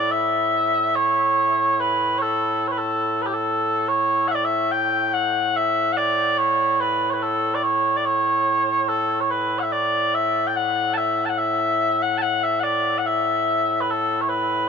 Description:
scottish traditional, Scottish pipe music; 72 BPM; 3/4; straight; A mixolydian; A4 = 440 Hz
mellow small bagpipes; solo; 0.0-14.7 s; A2 to A5; -19 LUFS; equal
moderate huge ambient reverb, RT60 6.9 s; -19 LUFS; side -6 dB against mid
0.0-14.7 A section

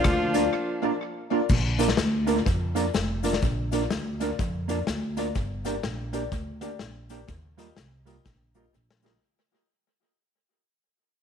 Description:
ska; 124 BPM; 4/4; swing 61% on 8ths; Bb major; A4 = 440 Hz
mellow horn section; melody; 0.0-1.3 s; F3 to F4; -27 LUFS; left 1 dB
upright bass; bass; 0.0-9.2 s; F1 to F2; -29 LUFS; equal
vintage drum kit; drums; 0.0-9.2 s; crash cymbal, hi-hat, kick drum, rim click, snare drum; -28 LUFS; left 2 dB; tape echo
cabasa; percussion; 0.0-9.1 s; -48 LUFS; left 12 dB
hollow-body jazz guitar; accompaniment; 0.3-9.1 s; G3 to Bb4; -30 LUFS; right 10 dB; tube saturation, tape echo
tack piano; stabs; 0.3-9.2 s; D4 to Eb5; -32 LUFS; left 10 dB; tape echo
light reverb, studio reverb; 1960s-style stereo with parts hard left and right; -24 LUFS; side -8 dB against mid
0.0-1.5 A section; 1.5-9.2 B section
break 0.5-1.5; fade-out 1.5-9.2; drum fill 8.3-9.2
0.0 Bb; 5.4 Gm; 7.3 Ebadd9

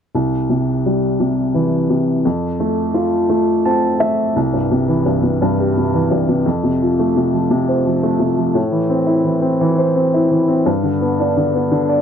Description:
pop; 57 BPM (dotted quarters); 6/8; straight; C major; A4 = 439 Hz
warm upright piano; solo; 0.1-12.0 s; C2 to A5; -14 LUFS; equal
light reverb; -14 LUFS; side -8 dB against mid
0.1-4.4 A section; 4.4-12.0 B section
upright piano fill 3.3-4.4, 11.7
0.1 C; 2.2 F; 4.4 C; 6.5 F; 8.6 Am; 10.7 G

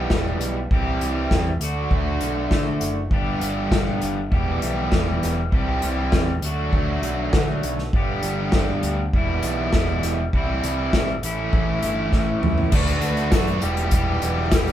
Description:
indie rock; 100 BPM; 4/4; straight; D major; A4 = 440 Hz
biting overdriven guitar; riff; 0.0-14.7 s; E2 to G4; -27 LUFS; left 4 dB
overdriven electric guitar; riff; 0.0-14.7 s; E2 to G4; -26 LUFS; right 4 dB
fuzz picked electric bass; bass; 0.0-14.7 s; E1 to D3; -26 LUFS; equal; overdrive
unplugged drum kit; drums; 0.1-14.7 s; crash cymbal, hi-hat, kick drum, snare drum, toms; -22 LUFS; equal
ensemble organ-string; sustained chords; 12.7-14.7 s; B4 to D6; -35 LUFS; equal
tambourine; percussion; 13.3-14.7 s; -42 LUFS; right 6 dB
moderate studio reverb, RT60 0.6 s; band playing live in one room; -19 LUFS; side -11 dB against mid
0.0-12.7 A section; 12.7-14.7 B section
drum fill 12.1-12.7
0.0 Em; 0.7 C; 1.6 D; 3.1 G; 4.3 Em; 5.5 C; 6.4 D; 7.9 G; 9.1 Em; 10.3 C; 11.2 A; 12.7 D6; 13.6 Em7

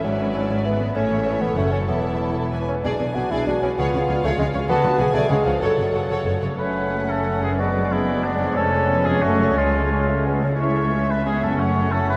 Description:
classical; 173-203 BPM; 3/4; rubato; F# minor; A4 = 443 Hz
rich studio violin section; melody; 0.0-12.2 s; C#5 to A5; -36 LUFS; equal
clear symphonic violin section; second line; 0.0-12.2 s; B3 to E5; -33 LUFS; equal
rich symphonic viola section; accompaniment; 0.0-12.2 s; G#3 to A4; -31 LUFS; equal
warm bassoon; accompaniment; 0.0-12.2 s; E3 to F#4; -28 LUFS; equal
concert harp; arpeggios; 0.0-12.2 s; E2 to E5; -30 LUFS; equal
rich studio double bass section; bass; 0.0-12.2 s; E1 to D2; -30 LUFS; equal
warm studio cello section; bass; 0.0-12.2 s; C#2 to D3; -30 LUFS; equal
bright clarinet; second line; 6.6-12.2 s; B3 to C#4; -31 LUFS; equal
mellow hollow silver concert flute; second line; 6.6-12.2 s; C#5 to F#5; -30 LUFS; equal
warm oboe; second line; 6.6-12.2 s; D4 to C#5; -27 LUFS; equal
clear French horn section; sustained chords; 6.9-12.2 s; G#3 to E4; -33 LUFS; equal
wet huge ambient reverb, RT60 8.7 s; in a vast, echoing space; -21 LUFS; mono
0.0-6.6 A section; 6.6-12.2 B section
0.0 E7/G#; 1.0 A; 1.6 F#m; 1.9 Esus4; 2.5 E; 2.8 G#dim/B; 3.8 C#7; 4.7 D; 5.0 G#dim/B; 5.3 C#; 5.6 F#m; 7.6 G#m7b5/F#; 8.6 C#/E#; 9.2 F#m; 9.6 C#; 10.6 C#m; 11.6 F#m

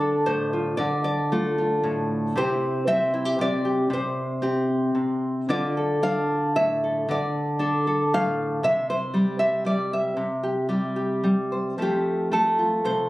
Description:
folk, solo fingerstyle acoustic guitar; 114 BPM; 3/4; rubato; D minor; A4 = 440 Hz
nylon-string guitar; solo; 0.0-13.1 s; A2 to F5; -22 LUFS; equal
light reverb; recorded on a phone in the room, club reverb; -22 LUFS; side -18 dB against mid
0.0-11.8 A section; 11.8-13.1 B section
0.0 Dm; 2.3 Cadd9; 5.5 Dm; 8.6 C; 11.8 F

